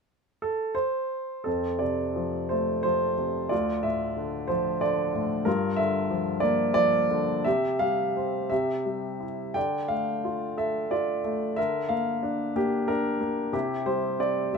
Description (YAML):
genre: classical, lyrical solo piano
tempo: 56-62 BPM (dotted quarters)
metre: 6/8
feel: rubato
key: F major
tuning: A4 = 440 Hz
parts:
  - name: clear grand piano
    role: solo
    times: 0.4-14.6 s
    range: D2 to G5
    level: -24 LUFS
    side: equal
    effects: none
room: light reverb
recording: minimal, uncompressed stereo recording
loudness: -25 LUFS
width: side -5 dB against mid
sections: 0.0-1.5 A section; 1.5-14.6 B section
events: none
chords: 0.0 N.C.; 1.5 F; 3.5 Dm; 5.5 Gm7; 7.5 Csus4; 8.5 C; 9.6 Dm; 11.6 Bb6/D; 13.5 C